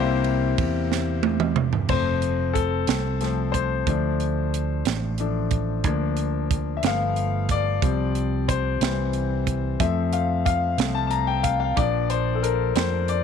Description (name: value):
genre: slow gospel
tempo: 61 BPM (dotted quarters)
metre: 6/8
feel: straight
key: F major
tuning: A4 = 440 Hz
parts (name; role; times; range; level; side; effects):
- clear grand piano; accompaniment; 0.0-13.2 s; C3 to Bb5; -24 LUFS; left 10 dB; none
- fingered electric bass; bass; 0.0-13.2 s; F1 to F2; -26 LUFS; right 2 dB; none
- crisp fusion drum kit; drums; 0.2-13.2 s; crash cymbal, hi-hat, kick drum, ride cymbal, snare drum, toms; -26 LUFS; right 8 dB; none
room: small room ambience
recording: 1960s-style stereo with parts hard left and right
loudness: -21 LUFS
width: side -7 dB against mid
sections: 0.0-1.9 A section; 1.9-13.2 B section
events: drum fill 0.9-1.9; grand piano solo 1.9-13.2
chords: 0.0 C7; 1.9 F; 3.9 Dm; 5.8 Bb/D; 6.8 G7; 7.8 Csus4; 8.8 C; 9.8 F; 11.8 Bb